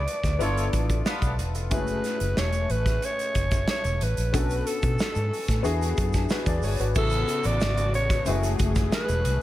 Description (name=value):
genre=polished 1980s jazz-funk pop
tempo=92 BPM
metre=4/4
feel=straight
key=A major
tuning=A4 = 440 Hz
part: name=breathy alto saxophone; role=melody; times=0.0-9.4 s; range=A4 to D5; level=-30 LUFS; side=right 1 dB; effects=none
part: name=warm concert grand piano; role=accompaniment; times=0.0-9.4 s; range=C#3 to D5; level=-31 LUFS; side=left 4 dB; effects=analog chorus
part: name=vintage muted fingered electric bass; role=bass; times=0.0-9.4 s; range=E1 to B2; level=-27 LUFS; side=equal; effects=none
part: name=modern studio drum kit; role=drums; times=0.1-9.4 s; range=crash cymbal, hi-hat, kick drum, snare drum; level=-28 LUFS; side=equal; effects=gated reverb
part: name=tube shaker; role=percussion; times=0.2-9.2 s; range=none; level=-45 LUFS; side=right 10 dB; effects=none
part: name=warm horn section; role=second line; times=0.4-1.3 s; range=B3 to C#5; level=-34 LUFS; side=equal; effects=none
part: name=warm studio string section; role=sustained chords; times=7.0-9.4 s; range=C#3 to G#4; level=-34 LUFS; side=equal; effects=none
room=studio ambience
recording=none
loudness=-22 LUFS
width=side -14 dB against mid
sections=0.0-7.0 A section; 7.0-9.4 B section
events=none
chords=0.4 G13; 1.7 F#m7; 4.3 Bm7; 5.6 E7; 7.0 A69; 8.3 F#m9